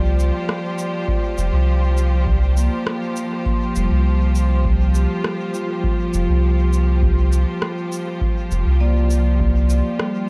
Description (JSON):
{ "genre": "ambient dub", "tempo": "101 BPM", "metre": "4/4", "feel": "straight", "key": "unclear", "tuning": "A4 = 440 Hz", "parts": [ { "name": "clear studio string section", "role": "sustained chords", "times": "0.0-10.3 s", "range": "F3 to C5", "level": "-28 LUFS", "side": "equal", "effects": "none" }, { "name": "vibraphone with medium hard mallets", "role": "arpeggios", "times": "0.0-10.3 s", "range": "G3 to C6", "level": "-28 LUFS", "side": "equal", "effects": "dub echo" }, { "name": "soft dub sub bass", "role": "bass", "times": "0.0-9.8 s", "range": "F1 to C2", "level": "-19 LUFS", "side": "equal", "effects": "none" }, { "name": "electronic shaker and rim click", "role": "drums", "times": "0.2-10.1 s", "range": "none", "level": "-30 LUFS", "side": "equal", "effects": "dub echo" }, { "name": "electronic kick drum", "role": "drums", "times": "1.1-9.5 s", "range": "none", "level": "-24 LUFS", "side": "equal", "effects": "overdrive" } ], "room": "little or no reverb", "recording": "dark, warm production", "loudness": "-19 LUFS", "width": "mono", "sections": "0.0-10.3 A section", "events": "none", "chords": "0.0 Fsus2" }